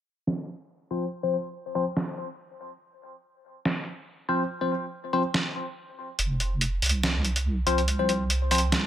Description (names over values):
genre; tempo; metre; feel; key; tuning
deep dubstep; 142 BPM; 4/4; swing 54% on 16ths, half-time; unclear; A4 = 442 Hz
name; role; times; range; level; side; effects
trip hop sampler-style drum kit; drums; 0.3-8.8 s; hi-hat, snare drum; -26 LUFS; right 1 dB; overdrive
bell-like tine electric piano; stabs; 0.9-8.6 s; F3 to C5; -28 LUFS; left 3 dB; phaser, low-pass filter, dub echo
deep soft wobble bass; bass; 6.2-8.9 s; F1 to C2; -26 LUFS; right 1 dB; chorus
room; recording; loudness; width
moderate spring reverb, RT60 1.7 s; low-pass filter; -25 LUFS; side -11 dB against mid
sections
0.0-6.2 A section; 6.2-8.9 B section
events
filter sweep on tine electric piano 0.0-6.2; filter sweep 0.0-6.2; build-up 6.2-8.9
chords
0.0 F5